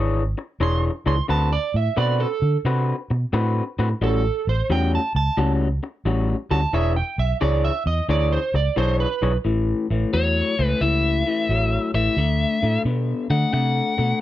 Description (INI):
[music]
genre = electric blues shuffle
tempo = 88 BPM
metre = 4/4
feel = swing 67% on 8ths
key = unclear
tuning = A4 = 440 Hz
[part]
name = electric guitar through a small old amp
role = riff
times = 0.0-14.2 s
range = A2 to C#5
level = -24 LUFS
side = left 4 dB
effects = none
[part]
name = vintage muted fingered electric bass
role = bass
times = 0.0-14.1 s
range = E1 to D3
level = -21 LUFS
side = right 1 dB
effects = none
[part]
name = electric slide guitar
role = second line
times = 0.6-9.4 s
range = A4 to C6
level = -25 LUFS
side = right 6 dB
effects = none
[part]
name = biting lead guitar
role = melody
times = 10.1-14.2 s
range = C#5 to F#5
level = -24 LUFS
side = left 3 dB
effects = overdrive
[sound]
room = light reverb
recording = none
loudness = -19 LUFS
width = side -13 dB against mid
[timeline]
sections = 0.0-9.5 A section; 9.5-14.2 B section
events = electric slide guitar solo 0.0-9.5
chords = 0.0 E6; 1.3 D6; 4.0 A6; 6.7 E6; 9.5 A6; 12.2 D13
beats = 0.61 | 1.29 1.97 2.65 3.33 | 4.01 4.69 5.37 6.05 | 6.73 7.41 8.09 8.77 | 9.45 10.13 10.81 11.49 | 12.17 12.85 13.53